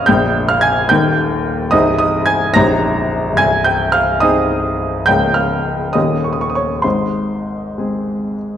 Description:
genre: classical, romantic character piece for solo piano.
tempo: 64-74 BPM (dotted quarters).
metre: 6/8.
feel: rubato.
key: Ab major.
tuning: A4 = 439 Hz.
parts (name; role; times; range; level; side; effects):
warm baby grand piano; solo; 0.0-8.6 s; Bb0 to Bb6; -13 LUFS; equal; none.
room: moderate recital hall reverb, RT60 1.3 s.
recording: dark, warm production.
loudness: -13 LUFS.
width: side -10 dB against mid.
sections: 0.0-8.6 A section.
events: none.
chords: 0.1 Bb7; 0.9 Eb; 1.7 Ab/C; 2.5 Eb7/Bb; 3.4 Ab/C; 5.1 Bbm/Db; 5.9 Eb7; 6.8 Ab.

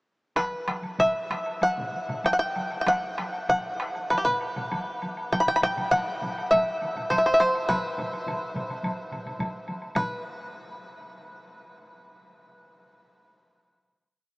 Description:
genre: japanese traditional, taiko drum ensemble.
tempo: 95-114 BPM.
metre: 4/4.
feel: straight.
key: B miyako bushi.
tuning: A4 = 436 Hz.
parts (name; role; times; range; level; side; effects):
bluegrass banjo; melody; 0.4-10.2 s; G4 to B5; -24 LUFS; equal; none.
solo taiko drums; percussion; 0.4-10.5 s; none; -37 LUFS; right 1 dB; none.
taiko ensemble; percussion; 0.4-10.2 s; none; -37 LUFS; equal; none.
taiko ensemble; percussion; 0.4-10.5 s; none; -40 LUFS; left 1 dB; none.
taiko ensemble; percussion; 0.4-10.2 s; none; -44 LUFS; equal; none.
woodblock; percussion; 0.4-10.2 s; none; -38 LUFS; equal; none.
room: wet huge ambient reverb, RT60 7.8 s.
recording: heard from further back in the room, small speaker sound.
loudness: -24 LUFS.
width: side -23 dB against mid.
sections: 0.4-10.0 A section; 10.0-12.1 final note.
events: speeding up 0.4-12.1.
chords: none.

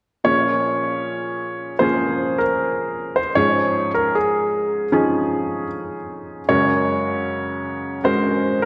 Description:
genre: pop ballad.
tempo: 77 BPM.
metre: 4/4.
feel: straight.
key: Bb minor.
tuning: A4 = 440 Hz.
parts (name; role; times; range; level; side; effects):
clear concert grand piano; melody; 0.2-8.7 s; Ab4 to Db5; -23 LUFS; equal; tape echo.
felt-muted upright piano; accompaniment; 0.2-8.7 s; Gb2 to Bb4; -24 LUFS; equal; none.
room: wet concert hall reverb, RT60 2.1 s.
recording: dark, warm production.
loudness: -21 LUFS.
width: mono.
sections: 0.3-8.7 A section.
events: none.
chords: 0.3 Bbm7; 3.4 Dbadd9/Ab; 6.5 Gbadd9.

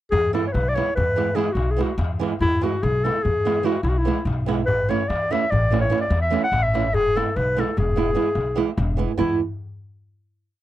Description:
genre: balkan folk, Balkan wedding band.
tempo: 291 BPM (eighths).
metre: 11/8.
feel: straight.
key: E mixolydian.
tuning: A4 = 444 Hz.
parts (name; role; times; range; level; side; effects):
mellow clarinet; melody; 0.1-9.4 s; E4 to F#5; -22 LUFS; left 2 dB; none.
upright bass; bass; 0.1-9.4 s; E1 to E2; -24 LUFS; left 1 dB; none.
darbuka; percussion; 0.1-9.4 s; none; -28 LUFS; left 2 dB; none.
nylon-string guitar; accompaniment; 0.3-9.4 s; E3 to E4; -24 LUFS; right 9 dB; none.
room: light reverb.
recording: dry, close 1970s-style studio recording.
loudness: -19 LUFS.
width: side -14 dB against mid.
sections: 0.1-9.2 A section; 9.2-10.6 final chord.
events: none.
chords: 0.1 E; 4.7 A; 6.9 E.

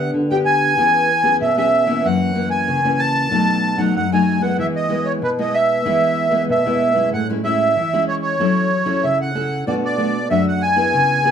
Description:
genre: samba.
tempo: 94 BPM.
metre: 4/4.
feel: straight.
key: E major, A major from 7.1 s.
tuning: A4 = 439 Hz.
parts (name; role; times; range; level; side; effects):
accordion; melody; 0.0-11.3 s; B4 to A5; -17 LUFS; right 1 dB; light tremolo tuning.
nylon-string guitar; accompaniment; 0.0-11.3 s; F#2 to A4; -19 LUFS; left 2 dB; none.
room: wet small room ambience, RT60 0.5 s.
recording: band playing live in one room.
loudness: -15 LUFS.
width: side -8 dB against mid.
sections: 0.0-7.1 A section; 7.1-11.3 B section.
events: none.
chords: 0.0 G/D; 0.8 E6; 2.0 F#7; 3.3 B7; 4.6 E; 7.1 Amaj7; 8.4 F#m7; 9.7 Bm7.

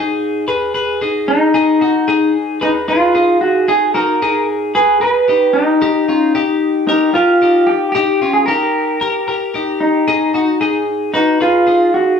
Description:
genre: indie pop.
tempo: 112 BPM.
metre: 4/4.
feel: straight.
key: G# dorian.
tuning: A4 = 440 Hz.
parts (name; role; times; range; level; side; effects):
twelve-string electric guitar; arpeggios; 0.0-12.2 s; C#4 to B4; -17 LUFS; left 2 dB; none.
electric guitar through a small old amp; melody; 1.3-12.2 s; D#4 to B4; -13 LUFS; equal; spring reverb.
room: wet small room reverb, RT60 0.5 s.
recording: band playing live in one room.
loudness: -12 LUFS.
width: side -7 dB against mid.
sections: 0.0-1.5 A section; 1.5-12.2 B section.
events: none.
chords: 0.0 G#m; 5.5 D#; 10.1 B.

